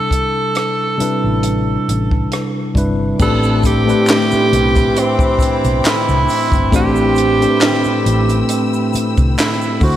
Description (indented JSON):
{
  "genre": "R&B, neo-soul",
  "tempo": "68 BPM",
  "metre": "4/4",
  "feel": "swing 54% on 16ths",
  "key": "A minor",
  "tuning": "A4 = 440 Hz",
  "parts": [
    { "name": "clear tenor saxophone", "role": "melody", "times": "0.0-10.0 s", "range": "C4 to A4", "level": "-18 LUFS", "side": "right 2 dB", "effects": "slapback echo" },
    { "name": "tine electric piano", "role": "accompaniment", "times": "0.0-10.0 s", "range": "A2 to C5", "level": "-17 LUFS", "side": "left 1 dB", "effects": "medium stereo tremolo, slapback echo" },
    { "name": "compact cocktail drum kit", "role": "drums", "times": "0.1-10.0 s", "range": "crash cymbal, handclaps, hi-hat, kick drum, rim click, snare drum", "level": "-18 LUFS", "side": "equal", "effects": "none" },
    { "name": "hollow-body short-scale fingered electric bass", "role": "bass", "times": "1.0-10.0 s", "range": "G1 to D2", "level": "-18 LUFS", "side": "equal", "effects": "none" },
    { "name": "warm studio string section", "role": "sustained chords", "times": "3.2-10.0 s", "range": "C4 to E6", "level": "-27 LUFS", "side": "left 2 dB", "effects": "none" },
    { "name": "clear saxophone section", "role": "stabs", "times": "3.2-10.0 s", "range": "E3 to F#4", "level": "-25 LUFS", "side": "left 2 dB", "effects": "slapback echo" },
    { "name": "egg shaker and finger snaps", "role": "percussion", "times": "3.2-10.0 s", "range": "none", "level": "-33 LUFS", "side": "right 1 dB", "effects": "none" }
  ],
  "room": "wet lush hall reverb, RT60 3.1 s",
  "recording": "big arena sound",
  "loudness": "-12 LUFS",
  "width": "side -12 dB against mid",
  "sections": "0.0-3.2 A section; 3.2-10.0 B section",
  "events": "none",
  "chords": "0.0 Am11"
}